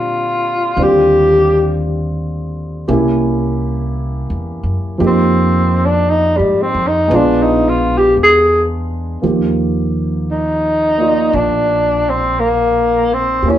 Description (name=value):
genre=jazz ballad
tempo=57 BPM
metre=4/4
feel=swing 68% on 8ths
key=Eb major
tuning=A4 = 440 Hz
part: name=breathy tenor saxophone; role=melody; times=0.0-13.6 s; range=G3 to Ab4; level=-13 LUFS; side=left 1 dB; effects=plate reverb
part: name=dark concert grand piano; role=accompaniment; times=0.0-13.6 s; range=D3 to D5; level=-18 LUFS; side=right 2 dB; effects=none
part: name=upright bass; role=bass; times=0.0-13.6 s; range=Bb1 to Bb2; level=-20 LUFS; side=equal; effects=none
room=wet club reverb, RT60 0.5 s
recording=heard from further back in the room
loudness=-12 LUFS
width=side -11 dB against mid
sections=0.0-9.2 A section; 9.2-13.6 B section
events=tenor saxophone solo 0.0-9.2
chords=0.0 Bbadd9; 0.8 Ebmaj9; 2.9 C7b9; 5.0 Fm7; 7.1 Bb7b9; 9.2 Ebmaj9